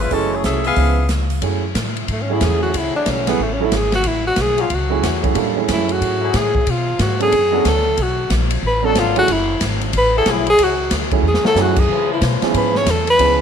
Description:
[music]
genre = jazz, big band swing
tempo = 184 BPM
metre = 4/4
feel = swing 63% on 8ths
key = F# minor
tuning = A4 = 440 Hz
[part]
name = bright saxophone section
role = melody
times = 0.0-1.1 s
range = E3 to E#5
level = -20 LUFS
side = left 4 dB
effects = none
[part]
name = upright bass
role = bass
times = 0.0-13.4 s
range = F#1 to C#3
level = -21 LUFS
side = equal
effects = none
[part]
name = warm concert grand piano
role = accompaniment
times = 0.1-13.4 s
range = E#3 to B4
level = -22 LUFS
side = right 13 dB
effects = none
[part]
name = swinging big-band drum kit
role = drums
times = 0.1-13.3 s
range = crash cymbal, hi-hat, kick drum, ride cymbal, snare drum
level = -22 LUFS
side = equal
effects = none
[part]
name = breathy tenor saxophone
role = melody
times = 2.1-13.4 s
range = A3 to C#5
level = -18 LUFS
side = equal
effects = none
[part]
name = mellow trombone section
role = sustained chords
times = 2.3-12.8 s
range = E#3 to B4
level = -26 LUFS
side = left 12 dB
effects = none
[sound]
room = light reverb, small room ambience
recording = 1960s-style stereo with parts hard left and right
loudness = -15 LUFS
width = side -8 dB against mid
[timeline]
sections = 0.0-1.4 A section; 1.4-13.4 B section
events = tenor saxophone solo 1.4-13.4; drum fill 11.2-11.6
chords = 0.1 F#m9; 0.8 C#7#9; 1.4 F#m9; 6.7 Bm7; 9.3 F#m9; 11.9 C#7#9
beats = | 0.12 0.45 0.78 1.10 | 1.43 1.76 2.09 2.42 | 2.75 3.07 3.40 3.73 | 4.05 4.38 4.71 5.04 | 5.36 5.69 6.02 6.34 | 6.67 7.00 7.32 7.65 | 7.98 8.30 8.63 8.96 | 9.28 9.61 9.94 10.26 | 10.59 10.91 11.24 11.57 | 11.89 12.22 12.55 12.87 | 13.20

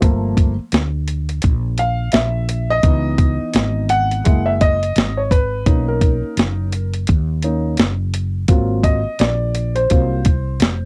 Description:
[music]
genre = hip hop, jazz-hop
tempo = 85 BPM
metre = 4/4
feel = swing 60% on 16ths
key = unclear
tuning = A4 = 442 Hz
[part]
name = dark concert grand piano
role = accompaniment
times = 0.0-10.9 s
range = E3 to F#5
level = -23 LUFS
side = equal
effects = cassette tape
[part]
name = woody fretless electric bass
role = bass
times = 0.0-10.9 s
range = E#1 to D#2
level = -22 LUFS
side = equal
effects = none
[part]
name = boom bap sampler-style drum kit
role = drums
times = 0.0-10.8 s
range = hi-hat, kick drum, snare drum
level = -17 LUFS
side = equal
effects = cassette tape
[sound]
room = little or no reverb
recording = home recording on cassette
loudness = -18 LUFS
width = mono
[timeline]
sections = 0.0-10.9 A section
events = grand piano solo 0.0-10.9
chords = 0.0 Gm9; 2.8 C#m9; 4.3 F#7; 5.7 Bmaj7; 8.5 G#13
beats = | 0.02 0.72 1.43 2.13 | 2.84 3.54 4.25 4.96 | 5.66 6.37 7.08 7.78 | 8.49 9.19 9.90 10.60

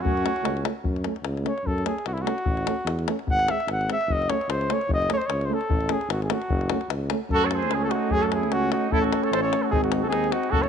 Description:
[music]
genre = balkan folk, Balkan brass band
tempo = 149 BPM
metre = 2/4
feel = swing 55% on 16ths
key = F# dorian sharp4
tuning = A4 = 440 Hz
[part]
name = warm flugelhorn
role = melody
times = 0.0-10.7 s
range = E4 to F#5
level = -26 LUFS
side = equal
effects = none
[part]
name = warm trumpet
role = second line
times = 0.0-0.6, 7.3-10.7 s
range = C#4 to A4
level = -30 LUFS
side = right 11 dB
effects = none
[part]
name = mellow euphonium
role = accompaniment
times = 0.0-10.7 s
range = G#3 to A3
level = -31 LUFS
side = right 11 dB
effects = none
[part]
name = mellow trombone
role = accompaniment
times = 0.0-10.7 s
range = B#3 to C#4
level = -33 LUFS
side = left 15 dB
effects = none
[part]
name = warm tuba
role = bass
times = 0.0-10.7 s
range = F#1 to F#2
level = -29 LUFS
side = equal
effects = none
[part]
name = davul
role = percussion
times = 0.1-10.7 s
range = none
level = -29 LUFS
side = left 4 dB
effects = none
[sound]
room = moderate plate reverb, RT60 2.9 s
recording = 1960s-style stereo with parts hard left and right, nothing above 10.5 kHz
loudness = -22 LUFS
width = side -7 dB against mid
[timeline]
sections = 0.8-7.3 A section; 7.3-10.7 B section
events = flugelhorn solo 0.8-7.3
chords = 0.0 F#m; 2.5 A; 3.3 G#; 4.1 F#m; 5.7 A; 6.5 F#m; 8.9 A; 9.7 G#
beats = | 0.03 0.43 | 0.84 1.25 | 1.65 2.06 | 2.46 2.87 | 3.27 3.68 | 4.08 4.49 | 4.89 5.29 | 5.70 6.10 | 6.50 6.90 | 7.31 7.71 | 8.11 8.51 | 8.91 9.31 | 9.71 10.11 | 10.51

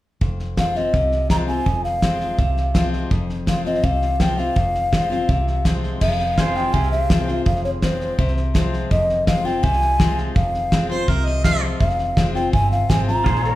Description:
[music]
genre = honky-tonk and classic country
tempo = 166 BPM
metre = 4/4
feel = straight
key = F minor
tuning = A4 = 440 Hz
[part]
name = picked steel-string acoustic guitar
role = accompaniment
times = 0.2-13.6 s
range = F2 to F4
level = -26 LUFS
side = left 4 dB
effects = none
[part]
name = vintage muted fingered electric bass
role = bass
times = 0.2-13.6 s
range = F1 to C2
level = -24 LUFS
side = equal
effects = none
[part]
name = damped 70s drum kit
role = drums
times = 0.2-13.5 s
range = crash cymbal, hi-hat, kick drum, snare drum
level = -21 LUFS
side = equal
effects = none
[part]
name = breathy mellow alto ocarina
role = melody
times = 0.6-13.6 s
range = C5 to Bb5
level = -22 LUFS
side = equal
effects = none
[part]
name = pedal steel guitar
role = sustained chords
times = 6.4-13.6 s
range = F4 to Db5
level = -30 LUFS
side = right 2 dB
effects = none
[part]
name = warm harmonica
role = second line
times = 10.9-11.6 s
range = Bb4 to F5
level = -24 LUFS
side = right 2 dB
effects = none
[sound]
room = moderate recital hall reverb, RT60 1.7 s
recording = recorded in a church or concert hall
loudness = -17 LUFS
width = side -15 dB against mid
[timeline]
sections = 0.2-6.0 A section; 6.0-13.6 B section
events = none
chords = 0.2 Fm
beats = | 0.21 0.58 0.94 1.30 | 1.66 2.03 2.39 2.75 | 3.11 3.48 3.84 4.20 | 4.56 4.93 5.29 5.65 | 6.01 6.38 6.74 7.10 | 7.46 7.83 8.19 8.55 | 8.91 9.27 9.64 10.00 | 10.36 10.72 11.09 11.45 | 11.81 12.17 12.53 12.90 | 13.26

